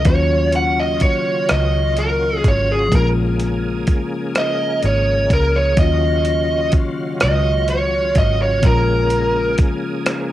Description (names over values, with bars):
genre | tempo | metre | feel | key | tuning
slow six-eight R&B | 42 BPM (dotted quarters) | 6/8 | straight | Eb minor | A4 = 441 Hz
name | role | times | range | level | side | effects
smooth overdriven lead guitar | melody | 0.0-9.6 s | Ab4 to Gb5 | -19 LUFS | right 1 dB | cassette tape
mellow tine electric piano | accompaniment | 0.0-10.3 s | Eb3 to F4 | -24 LUFS | left 5 dB | medium stereo tremolo, cassette tape
bright tonewheel organ | sustained chords | 0.0-10.3 s | Db3 to Ab4 | -26 LUFS | right 1 dB | chorus vibrato, slow rotary speaker, cassette tape
vintage muted fingered electric bass | bass | 0.0-9.6 s | Ab1 to Eb2 | -20 LUFS | equal | none
dusty soul sampler-style drum kit | drums | 0.0-10.3 s | hi-hat, kick drum, rim click | -18 LUFS | equal | cassette tape
room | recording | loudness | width
light reverb | home recording on cassette | -15 LUFS | side -14 dB against mid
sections
0.0-10.3 A section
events
lead electric guitar solo 0.0-10.3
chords
0.1 Ebm9; 2.9 Bbm7; 5.8 Ebm9; 8.6 Bbm7